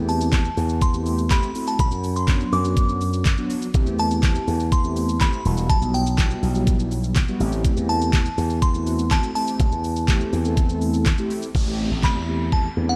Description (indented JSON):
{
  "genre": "dance-pop",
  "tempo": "123 BPM",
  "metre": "4/4",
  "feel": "straight",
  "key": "A dorian",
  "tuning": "A4 = 435 Hz",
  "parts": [
    { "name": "mellow synth brass", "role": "accompaniment", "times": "0.0-13.0 s", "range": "F#3 to A4", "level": "-30 LUFS", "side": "equal", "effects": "chorus, sidechain pumping" },
    { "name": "slap bass with an envelope filter", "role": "bass", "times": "0.0-13.0 s", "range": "E1 to F#2", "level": "-26 LUFS", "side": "equal", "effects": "sidechain pumping" },
    { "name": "glassy synth bell", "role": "melody", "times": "0.1-13.0 s", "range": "F#5 to D6", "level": "-30 LUFS", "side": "equal", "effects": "chorus, tremolo, tape echo" },
    { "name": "pop drum kit", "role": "drums", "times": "0.1-12.6 s", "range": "handclaps, hi-hat, kick drum, shaker, snare drum", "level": "-24 LUFS", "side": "equal", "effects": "none" },
    { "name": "group handclap", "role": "percussion", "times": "0.3-11.2 s", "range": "none", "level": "barely audible", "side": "none", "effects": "none" },
    { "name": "downlifter", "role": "sound effects", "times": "11.5-13.0 s", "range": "none", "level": "-36 LUFS", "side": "equal", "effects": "none" }
  ],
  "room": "light reverb",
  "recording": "dark, warm production",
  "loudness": "-21 LUFS",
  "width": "mono",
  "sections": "0.0-11.5 A section; 11.5-13.0 B section",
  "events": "none",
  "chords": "0.0 Am7; 1.8 Bm; 3.7 Am7; 5.5 Emadd9; 7.4 Am7"
}